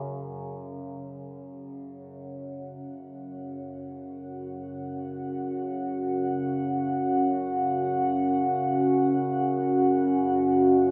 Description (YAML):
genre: ambient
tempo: free time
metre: none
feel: none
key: unclear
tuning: A4 = 440 Hz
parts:
  - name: dark analog pad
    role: sustained chords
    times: 0.8-10.9 s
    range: C#4 to F#5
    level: -28 LUFS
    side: equal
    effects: chorus, phaser, shimmer reverb
  - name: overtone-sweeping drone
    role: drone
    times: 0.0-10.9 s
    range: F#2 to C#3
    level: -39 LUFS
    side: equal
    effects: chorus, built-in reverb, phaser
room: wet cathedral reverb, RT60 5.2 s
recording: none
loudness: -26 LUFS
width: mono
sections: 0.0-10.9 A section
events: fade-in on synth drone 0.0-10.9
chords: 0.0 F#5